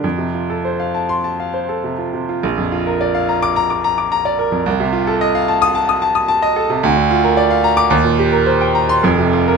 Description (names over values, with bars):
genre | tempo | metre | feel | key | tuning
classical, virtuoso piano study | 98-112 BPM | 4/4 | rubato | Bb major | A4 = 440 Hz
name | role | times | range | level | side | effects
clear grand piano | solo | 0.0-9.6 s | F1 to Eb6 | -14 LUFS | right 1 dB | none
room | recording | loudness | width
light reverb | minimal, uncompressed stereo recording | -14 LUFS | side -5 dB against mid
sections
0.0-2.4 A section; 2.4-9.6 B section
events
none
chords
0.0 F; 2.4 Bb; 4.7 F7/C; 6.8 Bb/D; 7.9 Cm7/Eb; 9.1 Fsus4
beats
| 0.03 0.64 1.24 1.83 | 2.43 3.00 3.56 4.12 | 4.66 5.21 5.76 6.30 | 6.84 7.38 7.92 8.48 | 9.05